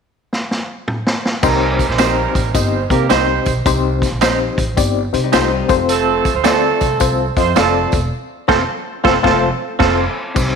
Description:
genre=uptempo 1960s-style soul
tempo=108 BPM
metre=4/4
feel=swing 65% on 8ths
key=C dorian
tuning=A4 = 439 Hz
part: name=vintage drum kit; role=drums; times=0.3-10.5 s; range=crash cymbal, hi-hat, kick drum, snare drum, toms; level=-19 LUFS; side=equal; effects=none
part: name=warm horn section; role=second line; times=1.4-10.0 s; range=F3 to C5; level=-19 LUFS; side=right 9 dB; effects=none
part: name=barky reed electric piano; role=accompaniment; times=1.4-10.6 s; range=C4 to Eb5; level=-19 LUFS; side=left 11 dB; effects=overdrive, fast tremolo
part: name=upright bass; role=bass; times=1.4-10.6 s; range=E1 to C3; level=-21 LUFS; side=equal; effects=none
part: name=tambourine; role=percussion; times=1.4-10.5 s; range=none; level=-31 LUFS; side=right 12 dB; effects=none
part: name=direct-recorded clean electric guitar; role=stabs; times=2.0-10.0 s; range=C4 to C5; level=-20 LUFS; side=right 10 dB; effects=none
part: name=archtop guitar, miked and amplified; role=riff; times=5.2-9.5 s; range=G3 to A4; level=-24 LUFS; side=left 11 dB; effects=none
room=moderate echo chamber reverb, RT60 1.6 s, studio reverb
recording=1960s-style stereo with parts hard left and right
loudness=-13 LUFS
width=side -6 dB against mid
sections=0.0-1.4 A section; 1.4-10.4 B section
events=drum fill 0.3-1.4; band accent 8.1-10.4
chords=0.0 N.C.; 1.4 Cm; 5.6 F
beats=0.32 0.88 | 1.43 1.99 2.54 3.10 | 3.66 4.22 4.78 5.33 | 5.89 6.45 7.01 7.57 | 8.12 8.68 9.24 9.80 | 10.36

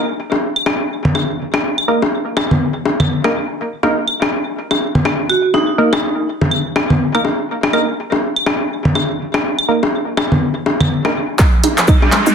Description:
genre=minimal techno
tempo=123 BPM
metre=4/4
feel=swing 59% on 16ths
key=Eb minor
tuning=A4 = 440 Hz
part: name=wavetable chord stab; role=stabs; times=0.0-11.1 s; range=Bb3 to Bb4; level=-18 LUFS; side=right 2 dB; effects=tape echo
part: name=bongos, claves and congas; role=percussion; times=0.3-12.1 s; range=none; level=-16 LUFS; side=left 1 dB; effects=none
part: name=vibraphone with hard mallets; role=melody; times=5.3-6.2 s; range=Eb4 to Gb4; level=-17 LUFS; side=right 2 dB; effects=low-pass filter, tape echo
part: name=woody FM bass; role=bass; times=11.4-12.3 s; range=Eb1 to Bb1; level=-21 LUFS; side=left 1 dB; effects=sidechain pumping, high-pass filter
part: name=electronic kick drum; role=drums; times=11.4-12.0 s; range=none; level=-11 LUFS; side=equal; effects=overdrive
part: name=house drum kit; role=drums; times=11.4-12.3 s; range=cabasa, handclaps, hi-hat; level=-16 LUFS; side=equal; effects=overdrive, high-pass filter on snare, high-pass filter on perc, high-pass filter on hats, high-pass filter on room
part: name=riser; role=sound effects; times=11.7-12.3 s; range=none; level=-19 LUFS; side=equal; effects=none
part: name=string-like resonator pluck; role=riff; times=11.6-12.3 s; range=Eb4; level=-18 LUFS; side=right 6 dB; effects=chorus, sidechain pumping, dub echo
room=moderate studio reverb, RT60 0.6 s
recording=dense, heavily limited modern master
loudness=-14 LUFS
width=side -7 dB against mid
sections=0.0-11.4 A section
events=drum fill 11.4-12.3; riser 11.7-12.3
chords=0.0 Eb5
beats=0.17 0.66 1.15 | 1.64 2.12 2.61 3.10 | 3.59 4.08 4.56 5.05 | 5.54 6.03 6.51 7.00 | 7.49 7.98 8.47 8.95 | 9.44 9.93 10.42 10.90 | 11.39 11.88

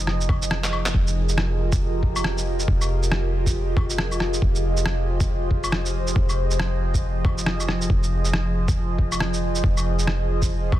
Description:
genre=future garage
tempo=138 BPM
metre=4/4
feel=swing 61% on 16ths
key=F minor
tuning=A4 = 440 Hz
part: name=warbly tape-like pad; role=sustained chords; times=0.0-10.8 s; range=F3 to Eb5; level=-27 LUFS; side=right 1 dB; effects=chorus, built-in reverb, phaser, vintage 12-bit sampler grit, sidechain pumping
part: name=soft 808-style bass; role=bass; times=0.0-10.8 s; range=F1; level=-24 LUFS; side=equal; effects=sidechain pumping
part: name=electronic rim click, shaker, claves and handclaps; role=drums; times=0.1-10.8 s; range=none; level=-27 LUFS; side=equal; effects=overdrive, studio reverb
part: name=electronic kick drum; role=drums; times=0.3-10.8 s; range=none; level=-22 LUFS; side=equal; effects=overdrive, studio reverb
room=little or no reverb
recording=dense, heavily limited modern master, vinyl crackle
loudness=-20 LUFS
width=side -14 dB against mid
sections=0.9-10.8 A section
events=drum fill 0.6-0.9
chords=0.0 Ab/F; 0.9 Fm11; 7.9 Ab/F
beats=0.07 0.51 | 0.94 1.38 1.81 2.25 | 2.68 3.12 3.55 3.98 | 4.42 4.86 5.29 5.72 | 6.16 6.59 7.03 7.46 | 7.90 8.33 8.77 9.20 | 9.64 10.07 10.51

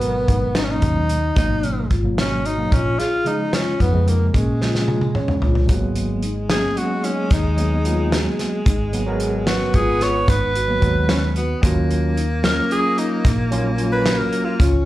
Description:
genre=progressive instrumental, band music in an uneven meter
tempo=222 BPM (eighths)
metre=11/8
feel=straight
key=G# dorian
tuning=A4 = 440 Hz
part: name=clear tenor saxophone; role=melody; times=0.0-14.7 s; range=G#3 to C#5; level=-22 LUFS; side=equal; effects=plate reverb, slapback echo
part: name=overdriven tine electric piano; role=accompaniment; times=0.0-14.5 s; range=B2 to C#5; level=-26 LUFS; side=right 1 dB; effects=fast tremolo, slapback echo
part: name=vibraphone with soft mallets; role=arpeggios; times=0.0-14.8 s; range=C#4 to G#4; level=-28 LUFS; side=left 2 dB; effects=plate reverb, slapback echo
part: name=hollow-body short-scale picked electric bass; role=bass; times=0.0-14.9 s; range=G#1 to A#2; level=-21 LUFS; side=equal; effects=none
part: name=loose indie drum kit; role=drums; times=0.0-14.7 s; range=hi-hat, kick drum, snare drum, toms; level=-20 LUFS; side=equal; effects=none
part: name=clear alto saxophone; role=second line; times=5.7-14.9 s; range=G#3 to C#4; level=-26 LUFS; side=left 1 dB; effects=slapback echo
part: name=egg shaker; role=percussion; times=5.7-14.9 s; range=none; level=-44 LUFS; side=left 1 dB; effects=none
room=light reverb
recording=live gig heard through the venue's PA, club reverb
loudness=-17 LUFS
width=side -15 dB against mid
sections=0.0-5.7 A section; 5.7-14.9 B section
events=drum fill 4.6-5.7; tine electric piano fill 4.9-5.7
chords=0.0 G#m7; 2.7 A#m7; 5.7 G#m7; 11.6 D#m7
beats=0.02 0.29 0.56 0.83 1.10 1.37 1.64 1.91 2.18 2.45 | 2.72 2.99 3.26 3.53 3.80 4.07 4.34 4.62 4.88 5.16 5.42 | 5.70 5.96 6.24 6.50 6.78 7.04 7.32 7.58 7.86 8.12 8.39 | 8.66 8.94 9.21 9.47 9.74 10.01 10.28 10.55 10.82 11.09 11.36 | 11.63 11.90 12.17 12.44 12.71 12.98 13.25 13.52 13.79 14.06 14.33 | 14.60

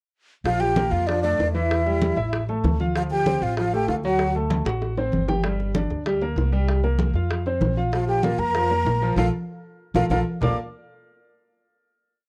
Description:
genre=Afro-Cuban jazz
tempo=193 BPM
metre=4/4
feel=straight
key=Bb major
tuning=A4 = 445 Hz
part: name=upright bass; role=bass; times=0.4-10.6 s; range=G1 to F2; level=-28 LUFS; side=equal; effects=none
part: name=breathy mellow concert flute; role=melody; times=0.5-4.3, 7.9-10.6 s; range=D5 to D6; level=-28 LUFS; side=equal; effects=none
part: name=breathy mellow silver concert flute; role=second line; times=0.5-4.3, 7.9-10.6 s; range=D4 to D5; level=-31 LUFS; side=equal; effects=none
part: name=clear upright piano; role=accompaniment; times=0.5-10.6 s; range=E3 to G5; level=-29 LUFS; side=equal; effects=none
part: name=bongos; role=percussion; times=0.5-10.5 s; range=none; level=-34 LUFS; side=equal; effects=none
part: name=congas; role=percussion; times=0.5-10.5 s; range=none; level=-31 LUFS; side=equal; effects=none
room=moderate studio ambience, RT60 0.5 s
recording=worn, warbling old tape, cassette tape, warbly pitch drift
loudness=-23 LUFS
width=mono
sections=0.5-10.4 A section; 10.4-11.7 final chord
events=drum fill 4.5-5.4; band accent 9.2-10.4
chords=0.5 Bbmaj7; 1.7 Emadd11; 2.3 A5; 2.9 Dm7; 4.2 D7; 5.4 Gm; 6.7 C5; 7.3 F5; 7.9 Bb5; 10.4 Bbmaj7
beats=| 0.46 0.77 1.08 1.39 | 1.70 2.01 2.33 2.64 | 2.95 3.26 3.57 3.88 | 4.19 4.50 4.81 5.12 | 5.44 5.75 6.06 6.37 | 6.68 6.99 7.30 7.61 | 7.93 8.24 8.55 8.86 | 9.17 9.48 9.79 10.11 | 10.42

